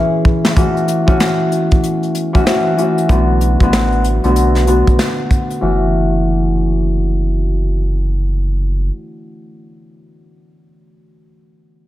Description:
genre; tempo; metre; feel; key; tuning
hip hop, boom-bap hip-hop; 95 BPM; 4/4; swing 62% on 16ths; F# minor; A4 = 441 Hz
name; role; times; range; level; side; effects
concert harp; accompaniment; 0.0-9.6 s; D3 to G#4; -16 LUFS; left 1 dB; high-pass filter, low-pass filter
soft brush drum kit; drums; 0.2-5.6 s; hi-hat, kick drum, snare drum; -15 LUFS; equal; none
sub bass with octave; bass; 3.1-8.9 s; F#1 to B1; -16 LUFS; equal; none
room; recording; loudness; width
light reverb, small room ambience; none; -12 LUFS; side -14 dB against mid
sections
0.6-5.6 A section; 5.6-8.1 B section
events
drum fill 0.0-0.6; filter sweep on harp 0.6-5.6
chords
0.0 C#m7; 0.6 F#m7; 3.1 Bm7; 5.6 F#m7

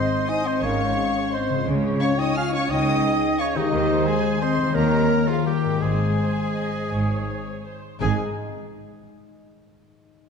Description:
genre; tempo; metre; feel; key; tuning
classical, orchestral ballroom waltz; 156-188 BPM; 3/4; rubato; Ab major; A4 = 441 Hz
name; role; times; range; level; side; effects
clear studio violin section; melody; 0.0-8.2 s; Eb5 to F6; -32 LUFS; left 3 dB; none
mellow hollow concert flute; second line; 0.0-8.2 s; G4 to Ab5; -30 LUFS; left 1 dB; none
rich studio violin section; second line; 0.0-8.2 s; Eb4 to F5; -34 LUFS; left 2 dB; none
warm oboe; second line; 0.0-8.2 s; Eb4 to F5; -29 LUFS; right 2 dB; none
rich studio viola section; accompaniment; 0.0-8.2 s; C4 to Eb5; -34 LUFS; right 3 dB; none
dark French horn section; sustained chords; 0.0-8.2 s; Eb3 to F4; -26 LUFS; left 2 dB; none
concert harp; arpeggios; 0.0-8.2 s; Ab2 to Eb5; -28 LUFS; left 8 dB; none
rich studio cello section; bass; 0.6-8.2 s; Ab2 to Eb3; -29 LUFS; right 4 dB; none
rich studio double bass section; bass; 0.6-8.2 s; Ab1 to Eb2; -30 LUFS; right 4 dB; none
room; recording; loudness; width
wet scoring stage reverb, RT60 2.0 s; dark, warm production; -20 LUFS; side -6 dB against mid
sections
0.0-8.0 A section; 8.0-9.1 B section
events
none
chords
0.0 Ab; 1.7 Db; 3.7 Ab/Eb; 4.8 Eb13; 5.8 Ab

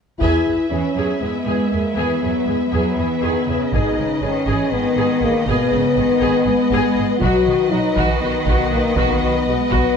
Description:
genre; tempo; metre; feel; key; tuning
cinematic, epic orchestral film score; 240 BPM (eighths); 7/8; straight; unclear; A4 = 440 Hz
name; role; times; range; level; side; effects
clear symphonic violin section; melody; 0.2-10.0 s; D#5 to E5; -29 LUFS; left 3 dB; none
rich symphonic violin section; second line; 0.2-10.0 s; B4; -28 LUFS; left 1 dB; none
rich studio viola section; accompaniment; 0.2-9.9 s; F#4 to G#4; -25 LUFS; right 1 dB; none
dark French horn section; sustained chords; 0.2-10.0 s; A#3 to F#4; -19 LUFS; left 3 dB; none
rich symphonic double bass section; bass; 0.2-9.8 s; G#1 to E2; -25 LUFS; right 3 dB; none
taiko ensemble; drums; 0.2-10.0 s; none; -23 LUFS; right 1 dB; none
rich symphonic cello section; bass; 0.7-10.0 s; B2 to G#3; -24 LUFS; right 3 dB; none
room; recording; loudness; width
moderate scoring stage reverb, RT60 1.6 s; dark, warm production; -16 LUFS; side -6 dB against mid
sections
0.2-10.0 A section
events
break 0.0; band accent 0.2-0.7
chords
0.2 E; 3.7 G#m; 7.2 B

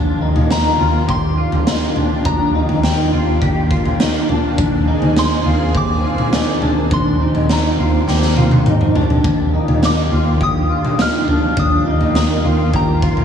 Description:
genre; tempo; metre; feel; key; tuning
dream pop; 103 BPM; 4/4; straight; Eb major; A4 = 439 Hz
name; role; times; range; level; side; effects
lush unison pad; sustained chords; 0.0-13.2 s; Eb3 to Ab4; -22 LUFS; right 1 dB; chorus
clean electric guitar; arpeggios; 0.0-13.2 s; D4 to G4; -21 LUFS; left 1 dB; ensemble chorus, tape echo
vintage muted fingered electric bass; bass; 0.0-13.2 s; Eb2; -19 LUFS; equal; none
raw garage drum kit; drums; 0.4-13.2 s; kick drum, snare drum, toms; -18 LUFS; equal; none
soft synth bell; melody; 0.5-13.2 s; G5 to F6; -23 LUFS; left 2 dB; chorus, tape echo
vibraphone with soft mallets; texture; 9.8-13.1 s; Bb4 to D5; -31 LUFS; right 4 dB; tape echo
room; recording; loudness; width
moderate concert hall reverb, RT60 2.1 s; small room ambience; -13 LUFS; side -8 dB against mid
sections
0.0-13.2 A section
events
drum fill 8.1-9.2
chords
0.0 Ebmaj7; 4.6 Bb7/Eb; 9.2 Ebmaj7

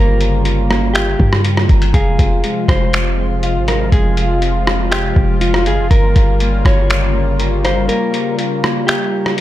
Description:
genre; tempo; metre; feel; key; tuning
hip hop, atmospheric cloud-rap; 121 BPM; 4/4; half-time; unclear; A4 = 440 Hz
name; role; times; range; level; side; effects
mellow electric guitar; melody; 0.0-9.3 s; F4 to Db5; -22 LUFS; equal; low-pass filter, tape echo
warm analog pad; sustained chords; 0.0-9.4 s; C3 to F4; -20 LUFS; left 1 dB; chorus, sidechain pumping
Celtic harp; arpeggios; 0.0-9.4 s; Ab3 to F5; -24 LUFS; left 1 dB; low-pass filter, tape echo
warm 808-style bass; bass; 0.0-7.9 s; F1 to G2; -16 LUFS; equal; none
lo-fi sampler-style drum kit; drums; 0.2-9.4 s; finger snaps, hi-hat, kick drum, rim click; -16 LUFS; equal; none
room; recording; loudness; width
digital ambience; none; -12 LUFS; side -14 dB against mid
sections
0.0-9.4 A section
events
break 7.9-9.4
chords
0.0 Gm7b5; 1.9 Fm; 5.9 Gm7b5

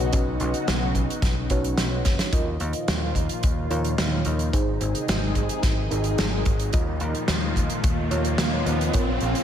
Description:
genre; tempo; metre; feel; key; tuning
synthwave; 109 BPM; 4/4; straight; unclear; A4 = 439 Hz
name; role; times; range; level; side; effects
lush unison pad; sustained chords; 0.0-9.4 s; Bb2 to Ab4; -29 LUFS; left 1 dB; chorus, phaser, sidechain pumping
FM electric piano with soft pad layer; stabs; 0.0-9.4 s; C#4 to D#5; -31 LUFS; right 2 dB; chorus, tremolo, ping-pong delay
picked electric bass; bass; 0.0-9.3 s; F#1 to Eb2; -27 LUFS; equal; tube saturation, sidechain pumping
kick drum; drums; 0.1-9.1 s; none; -24 LUFS; equal; none
natural country drum kit; drums; 0.1-9.4 s; hi-hat, snare drum; -28 LUFS; right 1 dB; gated reverb
riser; sound effects; 4.8-9.4 s; none; -33 LUFS; right 1 dB; none
room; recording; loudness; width
light reverb; none; -21 LUFS; side -9 dB against mid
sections
0.0-2.3 A section; 2.3-9.4 B section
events
drum fill 2.1; riser 4.8-9.4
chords
0.0 Badd9; 2.3 Ebsus2; 4.5 Ab; 6.7 Ebsus2

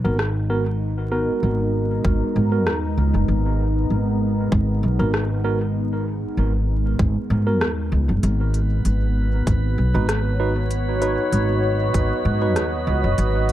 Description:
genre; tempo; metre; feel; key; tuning
ambient dub; 97 BPM; 4/4; swing 54% on 16ths; G# minor; A4 = 440 Hz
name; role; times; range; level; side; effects
deep dark ambient pad; sustained chords; 0.3-13.5 s; G#3 to A#5; -26 LUFS; equal; chorus, built-in reverb
tine electric piano; stabs; 0.0-12.6 s; B3 to B4; -27 LUFS; right 2 dB; medium stereo tremolo, dub echo
upright bass; bass; 0.0-13.5 s; F#1 to G#2; -20 LUFS; equal; none
organic electronic drum kit; drums; 0.2-13.5 s; hi-hat, rim click; -27 LUFS; equal; dub echo
electronic kick drum; drums; 2.0-12.1 s; none; -21 LUFS; equal; none
drifting glass-harmonics texture; texture; 8.7-13.5 s; B4; -32 LUFS; right 5 dB; chorus, built-in reverb
room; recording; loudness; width
light reverb, digital ambience; vinyl crackle; -18 LUFS; side -13 dB against mid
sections
0.0-13.5 A section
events
none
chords
0.0 G#m7

